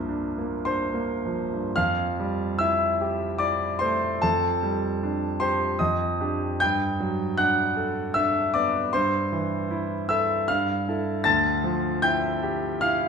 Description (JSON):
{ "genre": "classical, impressionist solo piano", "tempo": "76 BPM", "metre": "3/4", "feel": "uneven beats, rubato", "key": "F major", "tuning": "A4 = 441 Hz", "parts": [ { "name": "clear concert grand piano", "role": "solo", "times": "0.0-13.1 s", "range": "C2 to A6", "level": "-22 LUFS", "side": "equal", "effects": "none" } ], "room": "wet recital hall reverb, RT60 1.4 s", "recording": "minimal, uncompressed stereo recording", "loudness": "-22 LUFS", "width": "side -6 dB against mid", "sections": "0.0-1.8 A section; 1.8-13.1 B section", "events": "none", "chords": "0.0 C9sus4; 1.8 Fmaj9; 4.2 G5/F; 5.8 Ebmaj7/F; 6.6 Gmaj9; 8.9 Am7/G; 10.5 Fmaj7/G; 11.3 Dmadd9" }